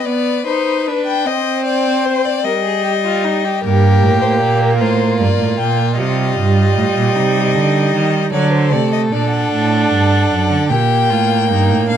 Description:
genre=classical, baroque-style fugue for string quartet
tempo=51 BPM (dotted quarters)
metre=12/8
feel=straight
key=C minor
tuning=A4 = 440 Hz
part: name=warm violin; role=melody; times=0.0-12.0 s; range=Bb4 to G5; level=-19 LUFS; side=left 10 dB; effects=none
part: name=warm violin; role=second line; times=0.0-12.0 s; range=D4 to C5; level=-22 LUFS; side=left 3 dB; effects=none
part: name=rich viola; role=accompaniment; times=0.0-12.0 s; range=F#3 to Eb4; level=-18 LUFS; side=right 3 dB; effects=none
part: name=rich cello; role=bass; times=3.6-12.0 s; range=F#2 to Eb3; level=-15 LUFS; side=right 4 dB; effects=none
room=moderate large studio reverb, RT60 0.8 s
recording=dark, warm production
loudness=-13 LUFS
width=side -9 dB against mid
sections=0.0-12.0 A section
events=none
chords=0.0 G/B (rootless); 1.3 Cm; 3.6 Gm; 6.0 Cm; 8.3 D7; 10.7 Gm

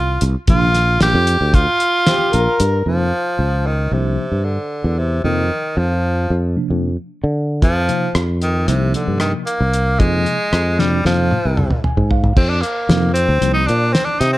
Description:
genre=progressive instrumental, band music in an uneven meter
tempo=227 BPM (eighths)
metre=9/8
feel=straight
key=F dorian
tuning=A4 = 441 Hz
part: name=edgy tenor saxophone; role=melody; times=0.0-14.4 s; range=C3 to G4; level=-19 LUFS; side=equal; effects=none
part: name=sustaining fretless electric bass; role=bass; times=0.0-14.4 s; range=Bb1 to D3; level=-17 LUFS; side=equal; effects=none
part: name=cloth-damped thuddy drum kit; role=drums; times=0.2-2.7, 7.6-14.3 s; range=crash cymbal, hi-hat, kick drum, rim click, snare drum, toms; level=-18 LUFS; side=equal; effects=none
part: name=mellow tine electric piano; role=accompaniment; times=0.5-13.6 s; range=C3 to Ab5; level=-23 LUFS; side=equal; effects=medium stereo tremolo
part: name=overdriven harmonica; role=second line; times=2.1-2.9 s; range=C4 to Bb4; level=-20 LUFS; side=left 2 dB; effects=none
room=light reverb, studio ambience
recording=dark, warm production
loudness=-14 LUFS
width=side -17 dB against mid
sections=0.0-2.9 A section; 2.9-12.4 B section; 12.4-14.4 C section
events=drum fill 10.8-12.4; tine electric piano fill 11.6-12.4; tenor saxophone solo 12.4-14.4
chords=0.5 Bb6; 2.9 F5; 3.9 C5; 5.2 F5; 6.3 Bb/F; 7.6 F5; 8.7 Cm7; 10.0 Fm7; 12.4 F5; 13.4 Cm7

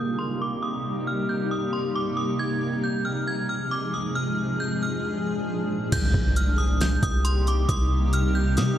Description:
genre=hip hop, atmospheric cloud-rap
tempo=136 BPM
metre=4/4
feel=half-time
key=C minor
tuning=A4 = 440 Hz
part: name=metallic FM bell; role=melody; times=0.0-8.8 s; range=C6 to Ab6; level=-30 LUFS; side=right 1 dB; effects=chorus, low-pass filter, digital delay
part: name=granular cloud pad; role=sustained chords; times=0.0-8.8 s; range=Bb2 to Ab4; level=-26 LUFS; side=equal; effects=built-in reverb, sidechain pumping, low-pass filter
part: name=long sustained 808-style bass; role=bass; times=5.9-8.8 s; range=C2 to C3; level=-22 LUFS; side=equal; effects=none
part: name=smooth R&B drum kit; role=drums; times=5.9-8.7 s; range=crash cymbal, hi-hat, kick drum, snare drum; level=-27 LUFS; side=equal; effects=none
part: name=impact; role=sound effects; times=5.9-7.7 s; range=none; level=-33 LUFS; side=equal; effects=none
room=light reverb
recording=none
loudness=-23 LUFS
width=side -11 dB against mid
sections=0.0-5.9 A section; 5.9-8.8 B section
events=impact 5.9-7.7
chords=0.0 Cm7; 2.4 Fm7; 4.2 Bb7; 5.9 Cm7

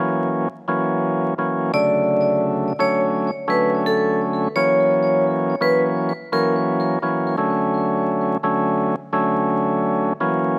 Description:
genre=hip hop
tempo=85 BPM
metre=4/4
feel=swing 60% on 16ths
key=B minor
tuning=A4 = 440 Hz
part: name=percussive tonewheel organ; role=accompaniment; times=0.0-10.6 s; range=C#3 to C#4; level=-21 LUFS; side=equal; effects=overdrive, cassette tape, high-pass filter, low-pass filter
part: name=vibraphone with hard mallets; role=melody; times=1.7-6.5 s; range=A4 to D5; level=-22 LUFS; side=equal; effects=high-pass filter, low-pass filter, digital delay
room=light reverb, small room ambience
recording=vinyl crackle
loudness=-20 LUFS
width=mono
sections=0.0-1.7 A section; 1.7-10.6 B section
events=none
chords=0.0 F#7; 1.7 Bm9/C# (rootless); 4.6 F#7; 7.4 Dmaj7

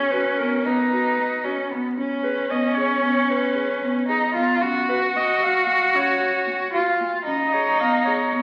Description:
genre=contemporary instrumental, chamber music in an uneven meter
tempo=227 BPM (eighths)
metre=5/8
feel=straight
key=unclear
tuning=A4 = 443 Hz
part: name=bright clarinet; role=melody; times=0.0-8.4 s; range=A#4 to E#5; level=-28 LUFS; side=equal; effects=none
part: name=rich cello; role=second line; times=0.0-8.4 s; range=B3 to F#4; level=-24 LUFS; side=equal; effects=none
part: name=folk marimba with soft mallets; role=arpeggios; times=0.0-8.4 s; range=A#3 to G#4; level=-28 LUFS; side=equal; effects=none
room=wet recital hall reverb, RT60 1.6 s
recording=very old 78 rpm record, vinyl crackle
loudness=-21 LUFS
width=mono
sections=0.0-2.0 A section; 2.0-8.4 B section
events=none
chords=0.0 B5; 2.0 C#5; 4.6 F#maj7; 7.3 C#7

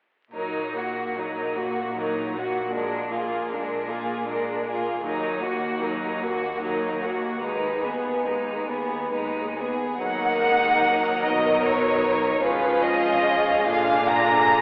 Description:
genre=classical, slow romantic movement for string orchestra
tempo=43-53 BPM (dotted quarters)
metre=6/8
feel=rubato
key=Eb minor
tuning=A4 = 440 Hz
part: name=warm chamber violin section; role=melody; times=0.3-14.6 s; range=Gb4 to Bb5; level=-28 LUFS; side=equal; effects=none
part: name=rich chamber violin section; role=second line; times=0.3-14.6 s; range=Cb4 to Bb4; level=-28 LUFS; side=equal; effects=none
part: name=warm studio viola section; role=accompaniment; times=0.3-14.6 s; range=D3 to D4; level=-33 LUFS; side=equal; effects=none
part: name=rich chamber cello section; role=bass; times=0.3-14.6 s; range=Eb2 to Eb3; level=-37 LUFS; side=equal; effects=none
part: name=warm chamber double bass section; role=bass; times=0.3-14.6 s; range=Ab1 to Eb2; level=-44 LUFS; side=equal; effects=none
room=wet scoring stage reverb, RT60 2.1 s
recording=heard from further back in the room, vinyl crackle, telephone sound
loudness=-24 LUFS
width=mono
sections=0.3-10.0 A section; 10.0-14.6 B section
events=none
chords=0.3 Ebm/Bb; 2.7 Bb7; 5.0 Ebm; 7.4 Abm/Eb; 10.0 Ebm; 11.2 Bmaj7; 12.4 Db9/Ab; 13.7 Bb7

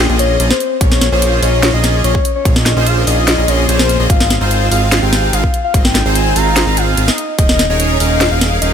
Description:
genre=future bass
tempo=146 BPM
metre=4/4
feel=half-time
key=Bb dorian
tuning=A4 = 440 Hz
part: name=soft octave-layered synth lead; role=melody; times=0.0-8.7 s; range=C5 to Bb5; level=-18 LUFS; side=left 3 dB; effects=chorus, phaser, sidechain pumping, digital delay
part: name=big bright polysynth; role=riff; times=0.0-8.7 s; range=Bb3 to F5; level=-17 LUFS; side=right 2 dB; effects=wide subtle chorus, sidechain pumping
part: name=fat analog bass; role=bass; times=0.0-8.7 s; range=Eb1 to Bb1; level=-15 LUFS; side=equal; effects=sidechain pumping
part: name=trap drum kit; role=drums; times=0.2-8.7 s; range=hi-hat, snare drum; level=-16 LUFS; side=equal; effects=overdrive, small room ambience
part: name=electronic kick drum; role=drums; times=0.8-7.5 s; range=none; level=-14 LUFS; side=equal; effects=overdrive, small room ambience
room=digital ambience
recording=none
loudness=-10 LUFS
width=side -8 dB against mid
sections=0.0-8.7 A section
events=none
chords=0.0 Bbm7; 4.1 Ab6; 7.4 Eb7sus4

